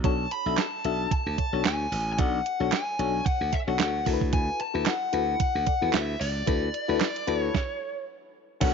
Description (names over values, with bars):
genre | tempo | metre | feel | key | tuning
early-eighties boogie funk | 112 BPM | 4/4 | swing 56% on 16ths | unclear | A4 = 440 Hz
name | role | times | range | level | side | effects
FM electric piano with tremolo | accompaniment | 0.0-8.7 s | D4 to E5 | -31 LUFS | left 16 dB | none
glassy slap bass | bass | 0.0-8.7 s | A1 to E2 | -30 LUFS | right 1 dB | none
clean 12-bit digital drum machine | drums | 0.0-8.7 s | crash cymbal, handclaps, hi-hat, kick drum, snare drum | -27 LUFS | right 4 dB | none
dark smooth lead guitar | melody | 0.1-8.7 s | D5 to B5 | -29 LUFS | left 1 dB | overdrive, slapback echo
room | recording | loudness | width
little or no reverb | 1960s-style stereo, nothing above 7.5 kHz | -24 LUFS | side -6 dB against mid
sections
0.0-8.6 A section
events
stop 7.5-8.6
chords
0.0 D69